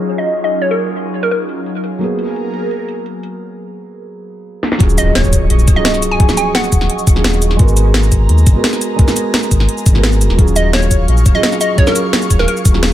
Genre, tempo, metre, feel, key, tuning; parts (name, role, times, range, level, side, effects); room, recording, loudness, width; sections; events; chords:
liquid drum and bass; 172 BPM; 4/4; straight; Eb minor; A4 = 440 Hz
felt-muted upright piano; accompaniment; 0.0-12.9 s; F3 to Bb4; -20 LUFS; right 2 dB; digital delay
airy breathy pad; sustained chords; 0.0-12.9 s; Gb3 to Db6; -24 LUFS; left 1 dB; chorus, phaser, sidechain pumping
drum and bass drum kit; drums; 0.1-12.9 s; cabasa, hi-hat, snare drum; -17 LUFS; equal; low-pass filter on hats, low-pass filter on snare, low-pass filter on perc, low-pass filter on room
hollow square pluck; melody; 0.2-1.4, 5.0-7.0, 10.6-12.5 s; Bb4 to Ab5; -18 LUFS; equal; chorus, digital delay
sub bass with octave; bass; 4.8-12.9 s; Eb1 to Eb2; -13 LUFS; equal
electronic kick drum; drums; 4.8-12.7 s; -11 LUFS; equal
impact; sound effects; 4.8-6.2 s; -21 LUFS; left 1 dB
digital ambience; low-pass filter; -11 LUFS; side -13 dB against mid
0.0-4.8 A section; 4.8-12.9 B section
filter sweep 0.0-4.8; break 3.4-4.8; drum fill 4.6; drop 4.8-12.9; impact 4.8-6.2
0.0 Ebm11; 2.0 Abm9; 4.8 Ebm11; 7.6 Abm9; 10.4 Ebm11